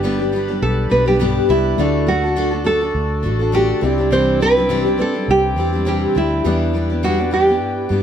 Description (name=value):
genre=acoustic pop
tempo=103 BPM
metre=4/4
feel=swing 55% on 16ths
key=G major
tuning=A4 = 439 Hz
part: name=nylon-string guitar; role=melody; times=0.0-8.0 s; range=E4 to C5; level=-18 LUFS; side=right 2 dB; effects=none
part: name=dark upright piano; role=accompaniment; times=0.0-8.0 s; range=G3 to D5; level=-30 LUFS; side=left 4 dB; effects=none
part: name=picked steel-string acoustic guitar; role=accompaniment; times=0.0-8.0 s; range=G2 to A4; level=-20 LUFS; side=left 2 dB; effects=none
part: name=hand-pumped harmonium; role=sustained chords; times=0.0-8.0 s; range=C4 to B5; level=-29 LUFS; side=left 2 dB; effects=none
part: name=vintage muted fingered electric bass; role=bass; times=0.0-8.0 s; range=G1 to G2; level=-22 LUFS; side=equal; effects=none
room=light reverb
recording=none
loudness=-15 LUFS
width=side -9 dB against mid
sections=0.0-8.0 A section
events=none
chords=0.0 G; 1.8 D; 3.8 Cadd9; 6.5 Em7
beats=0.04 0.62 1.20 | 1.78 2.37 2.95 3.54 | 4.12 4.70 5.29 5.87 | 6.45 7.03 7.62